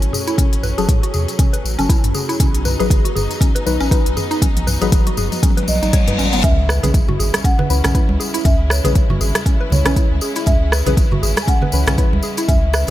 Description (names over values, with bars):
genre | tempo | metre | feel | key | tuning
afro house | 119 BPM | 4/4 | swing 57% on 16ths | C# minor | A4 = 440 Hz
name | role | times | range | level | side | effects
clear symphonic string section | sustained chords | 0.0-12.9 s | C#3 to E4 | -29 LUFS | left 1 dB | sidechain pumping
deep mellow chord stab | stabs | 0.0-12.2 s | E3 to B4 | -25 LUFS | left 4 dB | chorus, sidechain pumping, tape echo
warm sub bass | bass | 0.0-12.9 s | F#1 to A2 | -20 LUFS | equal | sidechain pumping
afro-pop drum kit | drums | 0.0-12.9 s | hi-hat, rim click, toms | -23 LUFS | equal | none
mallet-like synth pluck | arpeggios | 0.1-12.9 s | B3 to C#5 | -24 LUFS | equal | chorus, sidechain pumping, tape echo
tambourine | percussion | 0.1-12.9 s | none | -28 LUFS | left 3 dB | none
electronic kick drum | drums | 0.4-12.6 s | none | -15 LUFS | equal | none
reverse cymbal and impact | sound effects | 5.7-8.5 s | none | -24 LUFS | left 2 dB | none
marimba with soft mallets | melody | 5.7-12.9 s | C#5 to G#5 | -26 LUFS | equal | tape echo
congas | percussion | 6.4-12.9 s | none | -24 LUFS | right 3 dB | none
room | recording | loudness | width
light reverb, small room ambience | none | -14 LUFS | side -14 dB against mid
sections
0.0-6.4 A section; 6.4-12.9 B section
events
build-up 0.0-6.4; drum fill 0.0-6.4; filter sweep on synth stab 0.0-6.4; reverse cymbal 5.7-6.4; drop 6.4-12.9; impact 6.4-8.5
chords
0.0 A6; 2.4 B; 6.4 C#m7